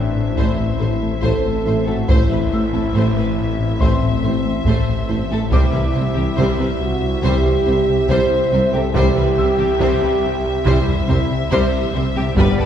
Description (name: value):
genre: cinematic, hybrid orchestral and electronic film score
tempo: 70 BPM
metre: 4/4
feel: straight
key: unclear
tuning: A4 = 440 Hz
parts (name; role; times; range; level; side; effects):
- warm symphonic violin section; melody; 0.0-12.7 s; D5 to E5; -29 LUFS; left 5 dB; none
- glassy FM pad; sustained chords; 0.0-12.7 s; G3 to C5; -29 LUFS; equal; none
- warm French horn section; sustained chords; 0.0-12.7 s; B3 to C5; -21 LUFS; equal; none
- smooth synth bass; riff; 0.0-12.7 s; C2 to A3; -25 LUFS; left 2 dB; none
- swelling detuned saw bass; bass; 0.0-12.7 s; G1 to C2; -25 LUFS; equal; none
- impact; sound effects; 0.0-2.1 s; none; barely audible; none; none
- warm concert grand piano; texture; 0.0-12.4 s; F#5 to F#6; -34 LUFS; left 3 dB; ping-pong delay
- warm symphonic violin section; second line; 0.4-12.7 s; G4 to C5; -27 LUFS; left 3 dB; none
- warm symphonic viola section; accompaniment; 0.4-12.7 s; G3 to A3; -27 LUFS; equal; none
- bright trombone section; sustained chords; 0.4-12.7 s; D3 to A3; -33 LUFS; right 3 dB; none
- warbly dusty pluck; arpeggios; 0.4-12.7 s; C3 to A4; -31 LUFS; left 3 dB; none
- rich symphonic double bass section; bass; 0.4-12.5 s; G1 to C2; -27 LUFS; right 2 dB; none
- warm chamber cello section; bass; 0.4-12.7 s; G2 to C3; -26 LUFS; right 2 dB; none
- warm tuba; bass; 0.4-12.5 s; G1 to C2; -27 LUFS; right 2 dB; none
- taiko ensemble; drums; 0.4-12.7 s; none; -21 LUFS; equal; none
room: wet concert hall reverb, RT60 2.1 s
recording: heard from further back in the room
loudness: -15 LUFS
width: side -9 dB against mid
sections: 0.0-12.7 A section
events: impact 0.0-2.1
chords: 0.0 Am; 5.5 C